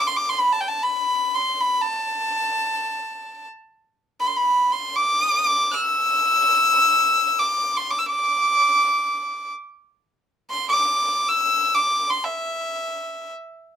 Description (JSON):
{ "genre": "Persian modal ensemble", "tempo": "free time", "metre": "none", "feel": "none", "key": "E dastgah shur", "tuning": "A4 = 440 Hz", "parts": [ { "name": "clear violin", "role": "solo", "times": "0.0-13.3 s", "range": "E5 to F6+40c", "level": "-19 LUFS", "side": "equal", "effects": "none" } ], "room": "moderate studio reverb, RT60 0.6 s", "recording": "minimal, uncompressed stereo recording", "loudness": "-18 LUFS", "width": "side -8 dB against mid", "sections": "0.0-13.8 A section", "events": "none", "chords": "none" }